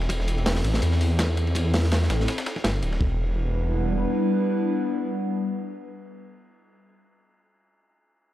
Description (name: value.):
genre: drum and bass, jungle.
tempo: 165 BPM.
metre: 4/4.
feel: swing 54% on 16ths.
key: E minor.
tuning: A4 = 440 Hz.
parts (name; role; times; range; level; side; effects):
warbly tape-like pad; sustained chords; 0.0-6.7 s; G3 to B4; -27 LUFS; left 1 dB; chorus, built-in reverb, phaser.
detuned saw bass; bass; 0.0-4.1 s; D1 to E2; -23 LUFS; equal; none.
dusty soul sampler-style drum kit; drums; 0.0-3.0 s; hi-hat, snare drum; -35 LUFS; left 1 dB; high-pass filter on snare, high-pass filter on hats.
crunchy breakbeat drum kit; drums; 0.1-3.1 s; hi-hat, kick drum, ride cymbal, snare drum; -29 LUFS; equal; high-pass filter on kick, high-pass filter on hats, high-pass filter on cymbals, high-pass filter on snare, high-pass filter on room.
room: light reverb, small room ambience.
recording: dry, gritty hardware recording.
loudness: -22 LUFS.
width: side -14 dB against mid.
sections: 0.0-3.0 A section; 3.0-5.9 B section.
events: none.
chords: 0.0 Am/E; 3.0 Em7.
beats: | 0.10 0.46 0.83 1.19 | 1.55 1.92 2.28 2.64 | 3.01 3.37 3.73 4.10 | 4.46 4.83 5.19 5.55.